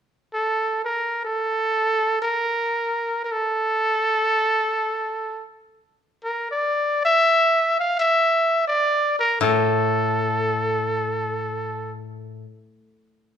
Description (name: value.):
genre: japanese traditional, Japanese chamber music.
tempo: free time.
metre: none.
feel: none.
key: A miyako bushi.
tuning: A4 = 440 Hz.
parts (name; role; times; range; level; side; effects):
bright trumpet; melody; 0.3-11.9 s; A4 to F5; -20 LUFS; right 1 dB; none.
koto; accompaniment; 9.4-12.4 s; A2; -25 LUFS; left 5 dB; none.
room: moderate recital hall reverb, RT60 1.2 s.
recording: recorded in a church or concert hall.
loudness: -19 LUFS.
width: side -8 dB against mid.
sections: 0.0-13.4 A section.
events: none.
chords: none.